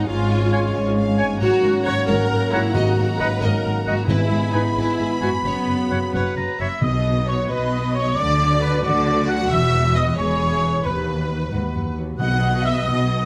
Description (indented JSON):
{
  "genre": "cinematic, heroic adventure film score",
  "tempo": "89 BPM (dotted quarters)",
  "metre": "6/8",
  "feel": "straight",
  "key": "B major from 6.8 s",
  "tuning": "A4 = 443 Hz",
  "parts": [
    { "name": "warm symphonic violin section", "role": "melody", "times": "0.0-13.3 s", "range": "B4 to B5", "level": "-35 LUFS", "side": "equal", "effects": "none" },
    { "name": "rich symphonic violin section", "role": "second line", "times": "0.0-13.3 s", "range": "E4 to B5", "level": "-34 LUFS", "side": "equal", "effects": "none" },
    { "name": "warm symphonic viola section", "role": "accompaniment", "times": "0.0-13.3 s", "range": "B3 to D#5", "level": "-27 LUFS", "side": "equal", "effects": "none" },
    { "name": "bright trombone section", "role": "sustained chords", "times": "0.0-6.6 s", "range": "G#2 to G#3", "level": "-33 LUFS", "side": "equal", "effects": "none" },
    { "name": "mellow French horn section", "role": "sustained chords", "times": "0.0-6.6 s", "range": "A#3 to F#4", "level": "-30 LUFS", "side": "equal", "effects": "none" },
    { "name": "concert harp", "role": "arpeggios", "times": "0.0-13.3 s", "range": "F#2 to B5", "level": "-34 LUFS", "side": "equal", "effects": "none" },
    { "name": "warm trumpet section", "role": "stabs", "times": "0.0-13.3 s", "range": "B4 to B5", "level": "-31 LUFS", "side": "equal", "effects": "none" },
    { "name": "warm symphonic cello section", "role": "bass", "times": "0.1-13.3 s", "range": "D#2 to D3", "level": "-28 LUFS", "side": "equal", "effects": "none" },
    { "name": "warm symphonic double bass section", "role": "bass", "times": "0.1-13.3 s", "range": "E1 to D#2", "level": "-26 LUFS", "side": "equal", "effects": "none" },
    { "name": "clear clarinet", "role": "second line", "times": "0.5-6.7 s", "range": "B4 to D#5", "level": "-31 LUFS", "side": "equal", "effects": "none" },
    { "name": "clear oboe", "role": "second line", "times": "0.5-6.8 s", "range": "F#5 to B5", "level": "-32 LUFS", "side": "equal", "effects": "none" },
    { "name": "mellow concert flute", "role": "second line", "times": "0.5-13.3 s", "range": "G#5 to F#6", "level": "-29 LUFS", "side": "equal", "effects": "none" },
    { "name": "timpani", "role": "percussion", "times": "2.7-4.7, 6.8-7.5, 12.2-12.8 s", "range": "G#2 to B2", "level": "-29 LUFS", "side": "equal", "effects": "none" }
  ],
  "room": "light reverb",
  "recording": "close, detailed microphones",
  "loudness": "-20 LUFS",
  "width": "mono",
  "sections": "0.0-6.8 A section; 6.8-13.3 B section",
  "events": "none",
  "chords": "0.1 C#/G#; 1.4 F#/G#; 2.7 D#m/G#; 4.1 E/G#; 5.4 F#sus4; 6.8 B; 8.2 D; 9.5 E; 10.8 B/D#; 12.2 B"
}